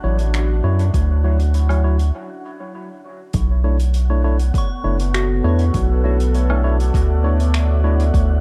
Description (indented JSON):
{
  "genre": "ambient dub",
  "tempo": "100 BPM",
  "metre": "4/4",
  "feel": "straight",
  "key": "B minor",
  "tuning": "A4 = 443 Hz",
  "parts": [
    { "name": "deep dark ambient pad", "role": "sustained chords", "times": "0.0-8.4 s", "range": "B3 to F#5", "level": "-30 LUFS", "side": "equal", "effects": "chorus, built-in reverb, vintage 12-bit sampler grit" },
    { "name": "soft synth bell", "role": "arpeggios", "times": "0.0-8.2 s", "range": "F#4 to C#6", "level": "-34 LUFS", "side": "equal", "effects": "chorus, phaser, dub echo" },
    { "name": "tine electric piano", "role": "stabs", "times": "0.0-8.0 s", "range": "F#3 to C#5", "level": "-28 LUFS", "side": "equal", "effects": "dub echo" },
    { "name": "round analog bass", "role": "bass", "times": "0.0-8.4 s", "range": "F#1 to F#2", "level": "-18 LUFS", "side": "equal", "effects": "none" },
    { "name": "wind-like tuned noise texture", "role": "texture", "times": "0.0-8.4 s", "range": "F#5", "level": "-41 LUFS", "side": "equal", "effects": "built-in reverb" },
    { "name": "soft-mallet drum kit", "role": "drums", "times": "0.2-8.3 s", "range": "finger snaps, hi-hat, woodblock", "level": "-34 LUFS", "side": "equal", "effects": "dub echo" },
    { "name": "electronic kick drum", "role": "drums", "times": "0.9-8.3 s", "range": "none", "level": "-22 LUFS", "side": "equal", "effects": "none" }
  ],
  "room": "light reverb, small room ambience",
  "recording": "dark, warm production",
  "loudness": "-18 LUFS",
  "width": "mono",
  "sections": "0.0-3.3 A section; 3.3-8.4 B section",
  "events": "break 2.1-3.3",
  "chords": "0.0 Dmaj9; 3.3 Bm11"
}